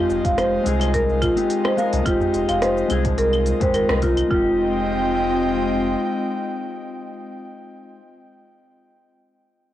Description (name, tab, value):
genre	organic downtempo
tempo	107 BPM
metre	4/4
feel	swing 54% on 16ths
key	F minor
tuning	A4 = 439 Hz
part	mellow electric guitar	accompaniment	0.0-8.0 s	Ab3 to Bb4	-26 LUFS	left 6 dB	sidechain pumping, cassette tape, tape echo
part	airy breathy pad	sustained chords	0.0-7.3 s	Ab3 to G5	-25 LUFS	equal	chorus, sidechain pumping, cassette tape
part	warm sub bass	bass	0.1-6.0 s	F1 to C2	-26 LUFS	right 1 dB	none
part	organic electronic drum kit	drums	0.1-4.3 s	claves, hi-hat, rim click, shaker	-28 LUFS	equal	cassette tape
part	darbuka	percussion	0.1-3.7 s	none	-33 LUFS	left 3 dB	none
part	marimba with medium mallets	arpeggios	0.2-4.6 s	F4 to F5	-21 LUFS	right 1 dB	vintage 12-bit sampler grit, cassette tape, tape echo
part	electronic kick drum	drums	0.2-4.4 s	none	-26 LUFS	right 1 dB	cassette tape
room	moderate small room reverb, RT60 0.6 s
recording	home recording on cassette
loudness	-18 LUFS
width	side -12 dB against mid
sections	0.0-4.3 A section; 4.3-6.5 B section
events	band accent 3.9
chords	0.0 Fm9